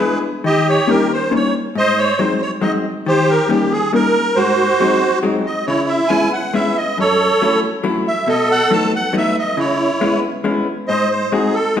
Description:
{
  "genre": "musette",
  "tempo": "138 BPM",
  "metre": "3/4",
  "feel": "straight",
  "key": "C# minor",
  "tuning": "A4 = 444 Hz",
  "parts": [
    { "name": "musette accordion", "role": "melody", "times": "0.0-11.8 s", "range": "E4 to A5", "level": "-16 LUFS", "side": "right 1 dB", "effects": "none" },
    { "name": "vintage hollow-body jazz guitar", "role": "accompaniment", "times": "0.0-11.8 s", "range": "F#2 to F#4", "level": "-18 LUFS", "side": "left 3 dB", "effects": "none" }
  ],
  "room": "wet recital hall reverb, RT60 1.4 s",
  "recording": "recorded in a church or concert hall",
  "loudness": "-14 LUFS",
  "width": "side -9 dB against mid",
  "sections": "0.0-11.8 A section",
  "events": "none",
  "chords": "0.4 D#7; 1.8 G#7; 3.1 D#7; 4.4 G#7; 5.7 C#m7; 7.0 F#m7; 8.3 B7; 9.6 C#m7; 10.9 G#7"
}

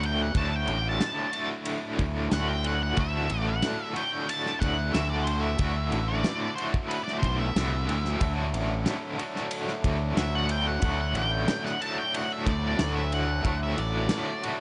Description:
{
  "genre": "psychedelic rock",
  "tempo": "92 BPM",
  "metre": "4/4",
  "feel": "straight",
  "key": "D major",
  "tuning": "A4 = 439 Hz",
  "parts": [
    { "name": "octave-fuzz lead guitar", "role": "melody", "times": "0.0-14.4 s", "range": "B4 to A5", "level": "-34 LUFS", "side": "equal", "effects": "distortion, analog delay" },
    { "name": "overdriven electric guitar", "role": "riff", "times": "0.0-14.6 s", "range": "D2 to F#4", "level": "-34 LUFS", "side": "equal", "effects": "tremolo" },
    { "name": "fuzz fingered electric bass", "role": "bass", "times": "0.0-14.1 s", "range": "A1 to D2", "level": "-31 LUFS", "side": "equal", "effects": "overdrive" },
    { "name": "cloth-damped thuddy drum kit", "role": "drums", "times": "0.0-14.6 s", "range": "kick drum, ride cymbal, snare drum", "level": "-35 LUFS", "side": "equal", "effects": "none" },
    { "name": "pedal harmonium", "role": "sustained chords", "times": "8.2-14.6 s", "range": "F#3 to A4", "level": "-42 LUFS", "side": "equal", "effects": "none" }
  ],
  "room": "studio reverb",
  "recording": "nothing above 10.3 kHz",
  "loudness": "-28 LUFS",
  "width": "mono",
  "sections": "0.0-14.6 A section",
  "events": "lead electric guitar solo 0.0-14.6",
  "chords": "0.0 D"
}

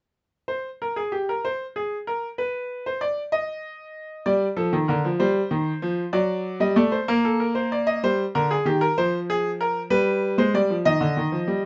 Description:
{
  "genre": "classical, baroque-style two-part invention for grand piano",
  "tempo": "64 BPM (dotted quarters)",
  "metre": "6/8",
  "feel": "straight",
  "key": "unclear",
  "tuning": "A4 = 440 Hz",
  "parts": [
    { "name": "bright baby grand piano", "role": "solo", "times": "0.5-11.7 s", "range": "D3 to Eb5", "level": "-24 LUFS", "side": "equal", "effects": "none" }
  ],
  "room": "light reverb",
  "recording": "nothing above 8.0 kHz",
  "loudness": "-24 LUFS",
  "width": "mono",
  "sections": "0.5-11.7 A section",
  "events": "none",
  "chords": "0.5 N.C.; 4.3 Gm; 5.2 Eb69; 6.2 D/F#; 7.1 Bbmaj9; 8.0 Cm; 9.0 Fmadd11; 9.9 G; 10.9 F7sus2/D"
}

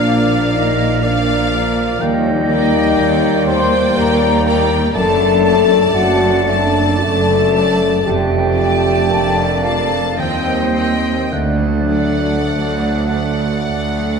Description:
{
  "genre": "classical, slow romantic movement for symphony orchestra",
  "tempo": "50-62 BPM",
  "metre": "3/4",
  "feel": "rubato",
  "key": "unclear",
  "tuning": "A4 = 440 Hz",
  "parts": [
    { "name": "rich symphonic violin section", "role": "melody", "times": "0.0-14.2 s", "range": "F5 to A5", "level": "-24 LUFS", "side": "left 3 dB", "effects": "none" },
    { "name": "bright large flute ensemble", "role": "second line", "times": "0.0-13.6 s", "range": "C5 to C6", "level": "-24 LUFS", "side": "equal", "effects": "none" },
    { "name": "clear symphonic violin section", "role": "second line", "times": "0.0-14.2 s", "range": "D5 to Eb5", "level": "-29 LUFS", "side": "left 1 dB", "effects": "none" },
    { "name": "warm clarinet", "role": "second line", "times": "0.0-14.2 s", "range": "D5 to Eb5", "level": "-25 LUFS", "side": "left 3 dB", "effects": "none" },
    { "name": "warm oboe", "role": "second line", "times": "0.0-14.2 s", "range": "F5 to A5", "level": "-25 LUFS", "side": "right 1 dB", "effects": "none" },
    { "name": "clear symphonic viola section", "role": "accompaniment", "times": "0.0-14.2 s", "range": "A3 to C4", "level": "-27 LUFS", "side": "equal", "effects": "none" },
    { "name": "mellow bassoon", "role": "accompaniment", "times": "0.0-14.2 s", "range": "A3 to C4", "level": "-25 LUFS", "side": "right 4 dB", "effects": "none" },
    { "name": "dark French horn section", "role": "sustained chords", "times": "0.0-13.6 s", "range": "C4 to C5", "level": "-18 LUFS", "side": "left 4 dB", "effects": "none" },
    { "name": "mellow trombone section", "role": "sustained chords", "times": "0.0-14.2 s", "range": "D3 to Bb3", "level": "-26 LUFS", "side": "right 3 dB", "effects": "none" },
    { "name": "concert harp", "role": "arpeggios", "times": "0.0-14.2 s", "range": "F2 to Bb5", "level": "-25 LUFS", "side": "left 7 dB", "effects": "none" },
    { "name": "clear symphonic cello section", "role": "bass", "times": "0.0-14.2 s", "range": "D2 to Bb2", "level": "-21 LUFS", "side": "right 2 dB", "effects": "none" },
    { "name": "rich studio double bass section", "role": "bass", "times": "0.0-14.2 s", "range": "F1 to Eb2", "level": "-21 LUFS", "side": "right 4 dB", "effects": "none" }
  ],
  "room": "wet scoring stage reverb, RT60 1.7 s",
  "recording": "minimal, uncompressed stereo recording",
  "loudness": "-13 LUFS",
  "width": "side -5 dB against mid",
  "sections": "0.0-14.2 A section",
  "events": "none",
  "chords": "0.0 Bb; 2.0 Ebmaj7; 4.9 D/F#; 8.1 Dm/F; 10.2 Cm/Eb; 11.3 D"
}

